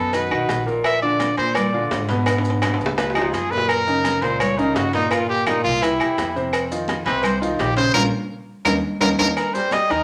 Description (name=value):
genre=Afro-Cuban jazz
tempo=169 BPM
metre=4/4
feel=straight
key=unclear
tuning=A4 = 440 Hz
part: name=clear trumpet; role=melody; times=0.0-10.0 s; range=Eb4 to E5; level=-24 LUFS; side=equal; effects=none
part: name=clear baby grand piano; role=accompaniment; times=0.0-10.0 s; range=Bb2 to Eb5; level=-26 LUFS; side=equal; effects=none
part: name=upright bass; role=bass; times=0.0-10.0 s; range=G1 to Bb2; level=-31 LUFS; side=equal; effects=none
part: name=agogo bells and timbales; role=percussion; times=0.1-10.0 s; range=none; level=-28 LUFS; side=equal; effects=none
part: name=congas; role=percussion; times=0.1-10.0 s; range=none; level=-32 LUFS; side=equal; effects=none
part: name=cowbell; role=percussion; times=0.1-10.0 s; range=none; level=-32 LUFS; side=equal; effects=none
part: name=maracas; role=percussion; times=0.1-10.0 s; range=none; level=-43 LUFS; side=equal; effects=none
part: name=claves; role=percussion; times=0.3-9.5 s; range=none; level=-32 LUFS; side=equal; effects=none
room=moderate large studio reverb, RT60 0.9 s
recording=none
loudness=-20 LUFS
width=mono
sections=0.0-9.4 A section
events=trumpet solo 0.0-10.0; drum fill 2.3-3.7, 8.5-9.4; band accent 8.0-9.4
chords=0.0 B; 0.9 Bb; 2.3 Abm; 3.0 Db; 3.7 Gb6; 5.1 Gm7; 5.8 C; 6.5 F5; 8.0 Bbm; 8.7 Eb5; 9.4 Abmaj7